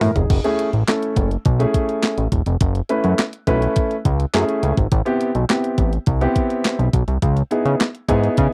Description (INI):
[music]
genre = early-eighties boogie funk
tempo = 104 BPM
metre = 4/4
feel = straight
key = F# dorian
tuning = A4 = 440 Hz
[part]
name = warm grand piano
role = accompaniment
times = 0.0-8.5 s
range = A3 to B4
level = -22 LUFS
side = equal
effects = none
[part]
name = fat analog bass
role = bass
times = 0.0-8.5 s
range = E1 to C#3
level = -21 LUFS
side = equal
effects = none
[part]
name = clean 12-bit digital drum machine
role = drums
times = 0.0-8.5 s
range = crash cymbal, handclaps, hi-hat, kick drum, snare drum, toms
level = -22 LUFS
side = equal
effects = overdrive
[sound]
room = little or no reverb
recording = dry, close 1970s-style studio recording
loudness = -19 LUFS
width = mono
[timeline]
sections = 0.0-8.5 A section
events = drum fill 0.0-0.3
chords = 0.3 F#m9; 4.9 Am9; 7.2 C#m9